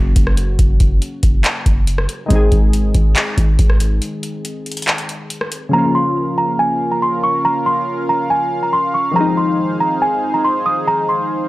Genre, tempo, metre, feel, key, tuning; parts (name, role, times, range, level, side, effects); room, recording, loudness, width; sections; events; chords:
hip hop, trap; 140 BPM; 4/4; half-time; Bb minor; A4 = 441 Hz
glassy digital keys; accompaniment; 0.0-11.5 s; Db3 to Ab4; -22 LUFS; left 2 dB; chorus, low-pass filter
warm 808-style bass; bass; 0.0-4.0 s; Gb1 to Ab1; -16 LUFS; equal
booming analog drum machine; drums; 0.2-5.6 s; handclaps, hi-hat, kick drum, rim click; -16 LUFS; equal
small celesta; melody; 5.7-11.5 s; Ab5 to Eb6; -16 LUFS; right 1 dB; low-pass filter
warm analog pad; sustained chords; 5.7-11.5 s; Db4 to F5; -23 LUFS; right 1 dB; chorus
digital ambience; dry, gritty hardware recording, cassette tape; -14 LUFS; side -18 dB against mid
0.0-5.7 A section; 5.7-11.5 B section
break 4.0-5.7
0.0 Gb; 2.3 Ab; 5.7 Bbm; 9.2 Fm7